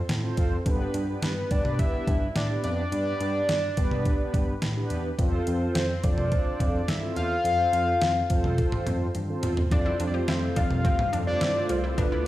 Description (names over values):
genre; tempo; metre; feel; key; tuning
synth-pop; 106 BPM; 4/4; straight; unclear; A4 = 440 Hz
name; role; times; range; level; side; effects
fat analog lead; melody; 0.0-12.3 s; B4 to F5; -28 LUFS; left 1 dB; digital delay
bell-like tine electric piano; bass; 0.1-12.2 s; C2 to A2; -29 LUFS; equal; medium stereo tremolo
detuned 8-bit digital drum machine; drums; 0.1-12.1 s; hi-hat, kick drum, snare drum, toms; -27 LUFS; equal; overdrive
mellow synth brass; accompaniment; 0.2-12.3 s; B3 to D5; -32 LUFS; equal; chorus
string machine, violas; sustained chords; 9.7-12.3 s; C3 to F4; -35 LUFS; equal; ensemble chorus
analog pluck; arpeggios; 9.7-12.2 s; C4 to G4; -35 LUFS; left 1 dB; chorus, digital delay
room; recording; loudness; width
moderate plate reverb, RT60 2.3 s; played on a big sound system in a bare room, stone room reverb; -23 LUFS; side -15 dB against mid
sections
0.0-9.7 A section; 9.7-12.3 B section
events
drum fill 9.1-9.7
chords
0.0 F; 0.7 G; 5.2 F; 9.7 Fadd9